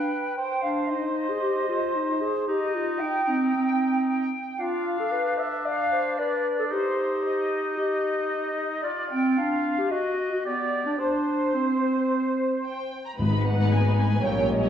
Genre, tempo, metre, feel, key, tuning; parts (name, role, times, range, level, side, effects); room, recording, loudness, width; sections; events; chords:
classical, dramatic, fast romantic movement for symphony orchestra; 113 BPM; 4/4; straight; C minor; A4 = 440 Hz
bright flute section; second line; 0.0-12.9 s; C5 to G5; -29 LUFS; left 1 dB
mellow clarinet; second line; 0.0-12.6 s; B3 to E5; -26 LUFS; equal
warm oboe; second line; 0.0-12.9 s; D4 to C5; -30 LUFS; equal
warm symphonic violin section; melody; 12.6-14.7 s; D#5 to B5; -32 LUFS; right 1 dB
rich symphonic violin section; second line; 13.2-14.7 s; Db4 to Db5; -29 LUFS; equal
warm symphonic viola section; accompaniment; 13.2-14.7 s; G3 to B3; -29 LUFS; left 2 dB
dark French horn section; sustained chords; 13.2-14.7 s; G#3 to D#4; -30 LUFS; left 3 dB
rich symphonic cello section; bass; 13.2-14.7 s; G#2 to Bb2; -28 LUFS; left 1 dB
rich symphonic double bass section; bass; 13.2-14.7 s; G#1 to Bb1; -25 LUFS; equal
timpani; percussion; 13.2-13.9 s; G#2; -29 LUFS; left 2 dB
wet recital hall reverb, RT60 1.5 s; worn, warbling old tape, cassette tape, warbly pitch drift; -23 LUFS; side -9 dB against mid
0.0-13.2 A section; 13.2-14.7 B section
0.4 Cm; 4.6 Dm6; 6.7 Cm/Eb; 8.8 Csus24; 9.9 Ebm/Gb; 10.5 G/B; 11.0 N.C.; 13.2 G#m